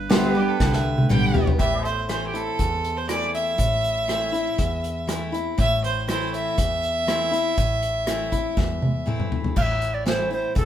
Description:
honky-tonk and classic country; 120 BPM; 4/4; straight; A minor; A4 = 440 Hz
bright reedy tenor recorder; melody; 0.0-1.1, 9.6-10.7 s; A4 to F5; -27 LUFS; right 2 dB
picked steel-string acoustic guitar; accompaniment; 0.0-10.7 s; E2 to G4; -27 LUFS; left 1 dB
vintage muted fingered electric bass; bass; 0.0-10.7 s; E1 to E2; -29 LUFS; equal
pedal steel guitar; sustained chords; 0.1-9.5 s; G4 to E5; -31 LUFS; right 2 dB
unplugged drum kit; drums; 0.1-10.7 s; crash cymbal, hi-hat, kick drum, rim click, snare drum, toms; -24 LUFS; equal
clear fiddle; second line; 0.4-9.0 s; G4 to G5; -25 LUFS; right 1 dB
moderate studio reverb, RT60 0.9 s; band playing live in one room; -20 LUFS; side -10 dB against mid
0.0-1.6 A section; 1.6-9.6 B section; 9.6-10.7 C section
drum fill 0.6-1.6, 8.6-9.6; fiddle solo 1.6-9.6
0.0 G; 1.6 Am
0.10 0.60 1.10 | 1.60 2.09 2.59 3.09 | 3.59 4.09 4.58 5.08 | 5.58 6.08 6.58 7.08 | 7.57 8.07 8.57 9.07 | 9.57 10.06 10.56

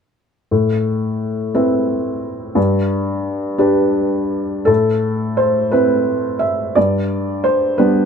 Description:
neoclassical minimalist piano; 58 BPM (dotted quarters); 6/8; rubato; A minor; A4 = 440 Hz
felt-muted upright piano; solo; 0.5-8.1 s; G2 to E5; -15 LUFS; equal
moderate studio reverb, RT60 0.6 s; -15 LUFS; side -6 dB against mid
0.5-4.7 A section; 4.7-8.1 B section
0.5 Amadd9; 2.6 G; 4.7 Amadd9; 6.8 G
| 0.50 1.54 | 2.56 3.60 | 4.69 5.73 | 6.76 7.78

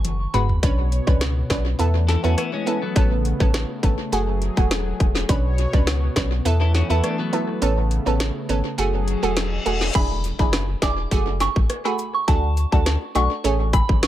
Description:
dancehall; 103 BPM; 4/4; straight; F# minor; A4 = 441 Hz
analog pluck; accompaniment; 0.0-14.1 s; G#3 to B4; -26 LUFS; right 4 dB; chorus, analog delay
warm sub bass; bass; 0.0-14.1 s; E1 to E2; -22 LUFS; equal
island pop drum kit; drums; 0.0-14.1 s; crash cymbal, hi-hat, kick drum, rim click, snare drum, toms; -22 LUFS; equal; overdrive, analog delay
soft synth bell; melody; 0.3-0.5, 9.9-14.1 s; A5 to D6; -26 LUFS; right 1 dB; chorus, phaser, analog delay
warm analog pad; sustained chords; 0.6-9.9 s; B2 to C#5; -29 LUFS; left 1 dB; chorus, sidechain pumping
twelve-string electric guitar; arpeggios; 2.1-3.1, 6.6-7.6 s; F#3 to A4; -27 LUFS; left 5 dB
reverse cymbal and impact; sound effects; 9.1-12.3 s; -32 LUFS; left 3 dB
woodblock and cabasa; percussion; 9.9-13.9 s; -33 LUFS; left 10 dB; analog delay
little or no reverb; echo-heavy mix; -18 LUFS; side -13 dB against mid
0.6-9.9 A section; 9.9-14.1 B section
drum fill 0.0-0.6; kick muted 7.6-9.9; reverse cymbal 9.1-9.9; impact 9.9-12.3
0.0 F#sus24; 0.6 Bmadd9; 1.8 Esus4; 3.0 Aadd9; 4.1 F#madd9; 5.3 Bmadd9; 6.5 Esus4; 7.6 Aadd9; 8.8 F#madd9; 9.9 E7; 11.1 F#madd9; 12.3 D; 13.4 Amaj7
0.05 | 0.63 1.21 1.79 2.38 | 2.96 3.54 4.12 4.71 | 5.29 5.87 6.45 7.04 | 7.62 8.20 8.78 9.37 | 9.95 10.53 11.11 11.70 | 12.28 12.86 13.44 14.03

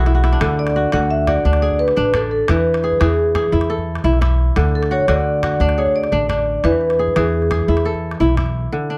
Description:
west african traditional, West African string and xylophone music; 116 BPM (dotted quarters); 12/8; straight; A4 = 440 Hz
kora; arpeggios; 0.0-9.0 s; D3 to D5; -22 LUFS; equal
upright bass; bass; 0.0-8.7 s; A1 to E2; -22 LUFS; equal
calabash; percussion; 0.1-8.5 s; -31 LUFS; equal
vibraphone with medium hard mallets; melody; 0.6-7.8 s; G#4 to F#5; -20 LUFS; equal
little or no reverb; dry, close 1970s-style studio recording; -17 LUFS; mono
0.0-8.7 A section
kora fill 0.0-0.4; drum fill 0.0-0.4
0.4 D; 2.5 E; 4.6 D; 6.6 E
| 0.41 0.93 1.45 1.97 | 2.48 3.00 3.52 4.04 | 4.56 5.08 5.60 6.12 | 6.64 7.16 7.68 8.21 | 8.73

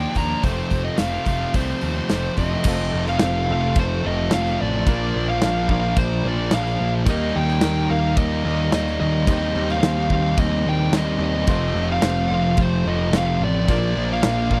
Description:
classic rock; 109 BPM; 4/4; straight; A4 = 439 Hz
fuzz lead guitar; melody; 0.0-14.6 s; C5 to Bb5; -28 LUFS; equal; distortion, slapback echo
sludgy distorted guitar; riff; 0.0-14.6 s; F2 to Eb4; -28 LUFS; equal; overdrive
tight distorted guitar; riff; 0.0-14.6 s; F2 to Eb4; -31 LUFS; equal; distortion
fuzz picked electric bass; bass; 0.0-14.6 s; F1 to Eb2; -26 LUFS; equal; overdrive
big rock drum kit; drums; 0.1-14.6 s; crash cymbal, hi-hat, kick drum, snare drum; -24 LUFS; equal
tonewheel organ; sustained chords; 2.3-14.6 s; barely audible
honky-tonk upright piano; accompaniment; 2.7-14.6 s; C4 to D5; -36 LUFS; equal
little or no reverb; dry, close 1970s-style studio recording; -21 LUFS; mono
0.0-2.7 A section; 2.7-14.6 B section
0.4 F; 4.9 Bb; 7.1 Eb; 9.3 Cm/Eb; 11.5 F; 13.7 Bb
| 0.44 0.99 1.55 2.10 | 2.66 3.21 3.76 4.31 | 4.87 5.42 5.97 6.52 | 7.07 7.62 8.18 8.73 | 9.28 9.83 10.38 10.93 | 11.48 12.04 12.59 13.14 | 13.69 14.24

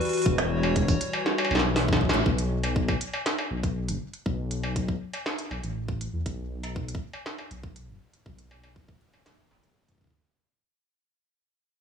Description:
IDM; 120 BPM; 4/4; straight; A4 = 440 Hz
hollow soft pad; sustained chords; 0.0-2.2 s; E3 to C#5; -29 LUFS; left 2 dB; chorus, sidechain pumping
industrial drum kit; drums; 0.0-10.0 s; hi-hat, snare drum, struck metal; -28 LUFS; right 1 dB; analog delay
dark detuned saw bass; bass; 0.3-10.2 s; E1 to E2; -28 LUFS; left 1 dB
electronic kick drum; drums; 0.3-10.1 s; -28 LUFS; equal
light reverb; echo-heavy mix, small room ambience; -25 LUFS; side -7 dB against mid
0.0-2.3 A section; 2.3-10.3 B section
drum fill 1.3-2.3; band accent 2.1; fade-out 2.3-10.3; filter sweep on detuned saw bass 2.3-10.3
0.0 Emadd9; 2.3 N.C.
| 0.26 0.76 1.26 1.76 | 2.26 2.76 3.26 3.76 | 4.26 4.76 5.26 5.76 | 6.26 6.76 7.26 7.76 | 8.26 8.76 9.26 9.76

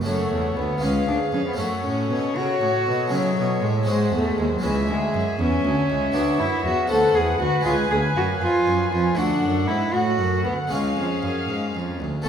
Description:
classical, baroque-style concerto movement with solo episodes; 79 BPM (dotted quarters); 6/8; straight; A4 = 440 Hz
rich cello; melody; 0.0-12.3 s; E3 to A4; -24 LUFS; left 1 dB
harpsichord; accompaniment; 0.0-12.3 s; C#2 to F#4; -28 LUFS; right 1 dB
warm chamber violin section; melody; 0.1-12.3 s; E5 to G#5; -38 LUFS; left 5 dB
dark chamber violin section; second line; 0.1-12.3 s; A4 to G#5; -28 LUFS; left 2 dB
warm chamber viola section; accompaniment; 0.1-12.3 s; G#4 to C#5; -31 LUFS; right 3 dB
rich chamber cello section; bass; 0.1-12.3 s; C#2 to C#3; -26 LUFS; right 2 dB
wet recital hall reverb, RT60 1.3 s; minimal, uncompressed stereo recording; -20 LUFS; side -8 dB against mid
0.1-12.3 A section
0.1 F#m; 0.8 C#7; 1.6 F#m; 3.1 C#m; 3.9 G#7; 4.6 C#m; 6.1 Bm/D; 6.9 D7; 7.6 C#; 9.2 D; 10.7 C#
| 0.06 0.82 | 1.58 2.36 | 3.12 3.87 | 4.63 5.39 | 6.14 6.89 | 7.65 8.40 | 9.17 9.93 | 10.71 11.49 | 12.26

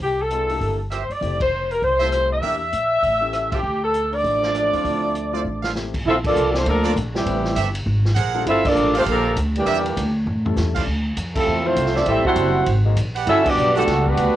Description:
jazz, big band swing; 199 BPM; 4/4; swing 62% on 8ths; D minor; A4 = 440 Hz
dark saxophone section; melody; 0.0-14.4 s; E3 to F#5; -20 LUFS; left 1 dB; cassette tape
upright bass; bass; 0.0-14.3 s; F1 to A2; -24 LUFS; equal
vintage drum kit; drums; 0.0-14.3 s; crash cymbal, hi-hat, kick drum, ride cymbal, rim click, snare drum, toms; -29 LUFS; equal; cassette tape
clear concert grand piano; accompaniment; 0.3-14.2 s; F3 to B4; -30 LUFS; left 9 dB; cassette tape
brilliant trumpet section; stabs; 0.9-13.8 s; F4 to F#5; -26 LUFS; right 8 dB; cassette tape
clear trombone section; second line; 4.1-14.4 s; Bb2 to A4; -24 LUFS; right 7 dB; cassette tape
light reverb; home recording on cassette; -18 LUFS; side -13 dB against mid
0.0-6.1 A section; 6.1-14.4 B section
band accent 1.4, 3.5, 6.2, 8.6, 11.3, 13.4; drum fill 5.5-5.8, 10.3-10.6
0.0 C7; 1.2 Fmaj7; 2.4 Em7b5; 3.0 A7; 3.6 Dm7; 6.1 Bbmaj7; 7.3 Am7; 7.9 G#9; 8.5 Gm9; 9.7 Em7b5; 10.3 A7; 10.9 Dm9; 12.1 Am7; 12.7 G#9; 13.3 Gmaj7
| 0.00 0.30 0.61 0.91 | 1.21 1.52 1.82 2.12 | 2.42 2.73 3.03 3.33 | 3.63 3.94 4.24 4.54 | 4.84 5.15 5.45 5.75 | 6.05 6.36 6.66 6.96 | 7.26 7.56 7.86 8.16 | 8.46 8.76 9.06 9.37 | 9.66 9.96 10.27 10.57 | 10.87 11.17 11.47 11.77 | 12.07 12.37 12.67 12.97 | 13.27 13.57 13.87 14.18

